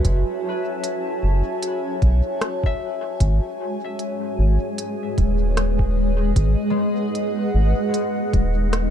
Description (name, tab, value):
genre	ambient dub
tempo	76 BPM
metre	4/4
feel	swing 56% on 16ths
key	unclear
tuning	A4 = 439 Hz
part	granular cloud pad	sustained chords	0.0-8.9 s	G#3 to A5	-23 LUFS	equal	built-in reverb
part	concert harp	arpeggios	0.0-8.9 s	G#3 to E5	-34 LUFS	left 6 dB	tape echo
part	round analog bass	bass	0.0-8.9 s	D#1 to B1	-18 LUFS	equal	none
part	electronic kick drum	drums	0.0-8.5 s	none	-21 LUFS	equal	small room ambience
part	organic electronic drum kit	drums	0.0-8.9 s	hi-hat, rim click	-30 LUFS	equal	small room ambience, dub echo
room	digital ambience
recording	dark, warm production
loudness	-19 LUFS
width	side -9 dB against mid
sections	0.0-8.9 A section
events	none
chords	0.0 F#m7; 3.2 G#m7